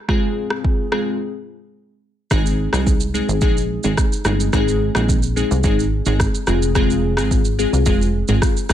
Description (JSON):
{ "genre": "afrobeats", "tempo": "108 BPM", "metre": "4/4", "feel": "straight", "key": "unclear", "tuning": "A4 = 440 Hz", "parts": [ { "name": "glassy digital keys", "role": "accompaniment", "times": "0.1-8.7 s", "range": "Ab3 to Ab4", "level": "-20 LUFS", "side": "left 1 dB", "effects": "chorus" }, { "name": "afro-pop drum kit", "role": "drums", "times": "0.1-8.7 s", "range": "kick drum, rim click, shaker, toms", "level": "-20 LUFS", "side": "equal", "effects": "vintage 12-bit sampler grit" }, { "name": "plucky analog bass", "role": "bass", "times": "2.3-8.7 s", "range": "F1 to C2", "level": "-20 LUFS", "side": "equal", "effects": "none" } ], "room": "little or no reverb", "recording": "none", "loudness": "-16 LUFS", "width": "side -11 dB against mid", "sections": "0.0-2.3 A section; 2.3-8.7 B section", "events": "break 1.2-2.3", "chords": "0.0 Fm; 2.3 Ab; 6.5 Fm" }